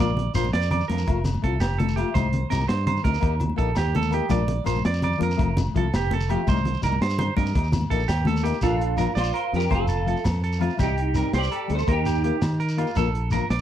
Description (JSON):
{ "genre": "highlife guitar band", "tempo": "111 BPM (dotted quarters)", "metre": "12/8", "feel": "straight", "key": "Bb major", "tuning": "A4 = 443 Hz", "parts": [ { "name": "fingerpicked steel-string acoustic guitar", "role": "accompaniment", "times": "0.0-13.4 s", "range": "F3 to G4", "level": "-28 LUFS", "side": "left 8 dB", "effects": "none" }, { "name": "clean electric guitar", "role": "arpeggios", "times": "0.0-13.6 s", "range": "F4 to D5", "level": "-29 LUFS", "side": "right 9 dB", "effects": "lush chorus, slapback echo" }, { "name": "fingered electric bass", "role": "bass", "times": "0.0-13.6 s", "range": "F1 to Eb3", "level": "-25 LUFS", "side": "equal", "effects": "none" }, { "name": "crunchy breakbeat drum kit", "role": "drums", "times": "0.0-13.6 s", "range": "hi-hat, kick drum, snare drum", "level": "-28 LUFS", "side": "equal", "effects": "none" }, { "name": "congas", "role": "percussion", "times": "0.2-8.6 s", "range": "none", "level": "-29 LUFS", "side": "left 2 dB", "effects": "none" }, { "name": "shekere", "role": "percussion", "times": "0.3-13.6 s", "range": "none", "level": "-32 LUFS", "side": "left 1 dB", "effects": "none" }, { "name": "agogo bells", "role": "percussion", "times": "0.4-13.5 s", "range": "none", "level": "-36 LUFS", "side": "left 4 dB", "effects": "none" }, { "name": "semi-hollow electric guitar", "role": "melody", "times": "8.6-12.4 s", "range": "D4 to D5", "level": "-26 LUFS", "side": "right 2 dB", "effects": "ensemble chorus" } ], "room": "studio reverb", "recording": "dry, close 1970s-style studio recording", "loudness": "-21 LUFS", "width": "side -11 dB against mid", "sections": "0.0-8.6 A section; 8.6-13.6 B section", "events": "none", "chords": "0.0 Bb; 1.1 F; 2.2 Cm; 3.2 Eb; 4.3 Bb; 5.4 F; 6.5 Cm; 7.6 Eb; 8.6 Bb; 9.7 F; 10.8 Cm; 11.9 Eb; 13.0 Bb", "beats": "0.54 1.08 1.62 | 2.16 2.70 3.24 3.78 | 4.32 4.86 5.39 5.93 | 6.47 7.01 7.55 8.09 | 8.63 9.18 9.72 10.26 | 10.80 11.34 11.88 12.42 | 12.96 13.51" }